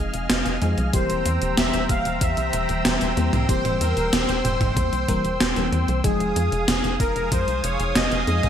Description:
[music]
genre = synthwave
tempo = 94 BPM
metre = 4/4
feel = straight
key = F minor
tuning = A4 = 439 Hz
[part]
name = warm analog pad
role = sustained chords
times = 0.0-8.5 s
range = C5 to F6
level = -29 LUFS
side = equal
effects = chorus, sidechain pumping
[part]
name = FM electric piano with soft pad layer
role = stabs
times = 0.0-8.5 s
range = E3 to C5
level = -28 LUFS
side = left 3 dB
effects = chorus, phaser
[part]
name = tight sequencer bass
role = bass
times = 0.0-8.5 s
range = E1 to F2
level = -26 LUFS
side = equal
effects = sidechain pumping
[part]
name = gated 80s digital drum machine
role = drums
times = 0.1-8.5 s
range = hi-hat, snare drum, toms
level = -24 LUFS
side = right 1 dB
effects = gated reverb, gated reverb snare, overdrive
[part]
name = soft supersaw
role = melody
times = 0.9-8.5 s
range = Ab4 to F5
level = -26 LUFS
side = equal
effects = ping-pong delay
[part]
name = electronic kick drum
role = drums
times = 0.9-7.4 s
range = none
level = -25 LUFS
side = equal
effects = overdrive
[sound]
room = light reverb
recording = bright 1980s-style digital production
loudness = -19 LUFS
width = side -9 dB against mid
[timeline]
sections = 0.0-8.5 A section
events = none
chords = 0.0 Fm7; 0.9 C7/E; 6.0 Fm7

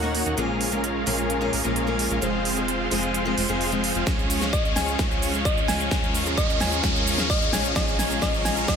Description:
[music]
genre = EDM, festival progressive house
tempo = 130 BPM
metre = 4/4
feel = straight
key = unclear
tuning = A4 = 438 Hz
[part]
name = picked old ladder-braced acoustic guitar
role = accompaniment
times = 0.0-8.8 s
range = Bb2 to Ab4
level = -30 LUFS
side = left 4 dB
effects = sidechain pumping, tape echo
[part]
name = bright symphonic string section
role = sustained chords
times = 0.0-8.8 s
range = Ab4 to Db6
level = -35 LUFS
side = left 2 dB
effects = sidechain pumping, low-pass filter
[part]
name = dense compressed supersaw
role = riff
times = 0.0-8.8 s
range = Ab3 to Gb5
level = -27 LUFS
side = right 1 dB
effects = sidechain pumping, low-pass filter, tape echo
[part]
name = fat analog bass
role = bass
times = 0.0-8.8 s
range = F1 to Eb2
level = -32 LUFS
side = equal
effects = sidechain pumping
[part]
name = riser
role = sound effects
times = 0.3-8.8 s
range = none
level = -29 LUFS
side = equal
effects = none
[part]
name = big-room dance drum kit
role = drums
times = 0.1-8.8 s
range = hi-hat, shaker, snare drum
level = -29 LUFS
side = right 2 dB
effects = none
[part]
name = electronic kick drum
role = drums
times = 4.1-8.8 s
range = none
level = -26 LUFS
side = equal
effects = none
[part]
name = thumb-piano-like synth pluck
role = melody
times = 4.5-8.8 s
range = Eb5 to Ab5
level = -30 LUFS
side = left 1 dB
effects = chorus, tape echo
[sound]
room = light reverb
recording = none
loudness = -21 LUFS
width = side -7 dB against mid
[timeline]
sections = 0.0-8.8 A section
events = build-up 0.0-8.8; filter sweep on string section 0.0-8.8; riser 0.3-8.8; drum fill 4.1-8.8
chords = 0.4 Bbm7; 2.2 Fm; 4.1 Db; 5.9 Eb5; 7.8 Bbm7

